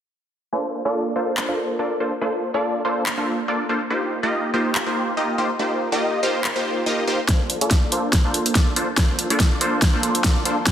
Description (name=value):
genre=future bass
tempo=142 BPM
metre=4/4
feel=swing 55% on 16ths, half-time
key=Bb major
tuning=A4 = 440 Hz
part: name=supersaw stab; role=riff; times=0.5-10.7 s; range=Bb3 to Eb5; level=-21 LUFS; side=equal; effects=phaser, cassette tape, sidechain pumping, low-pass filter, tape echo
part: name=big-room dance drum kit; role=drums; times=1.4-10.7 s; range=handclaps, hi-hat, snare drum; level=-23 LUFS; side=equal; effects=overdrive, studio reverb
part: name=electronic kick drum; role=drums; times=7.3-10.7 s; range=none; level=-19 LUFS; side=equal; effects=studio reverb
room=moderate lush hall reverb, RT60 1.7 s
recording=dense, heavily limited modern master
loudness=-19 LUFS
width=side -10 dB against mid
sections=0.5-7.3 A section; 7.3-10.7 B section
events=filter sweep on supersaw synth 0.5-7.3, 7.3-10.7; build-up 7.3-10.7; drum fill 7.3-10.7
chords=0.5 Bbmaj9; 3.9 Eb69; 7.3 Bbmaj9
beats=| 0.53 0.95 1.37 1.79 | 2.21 2.64 3.06 3.48 | 3.91 4.33 4.75 5.17 | 5.60 6.02 6.44 6.86 | 7.29 7.71 8.13 8.55 | 8.98 9.40 9.82 10.24 | 10.67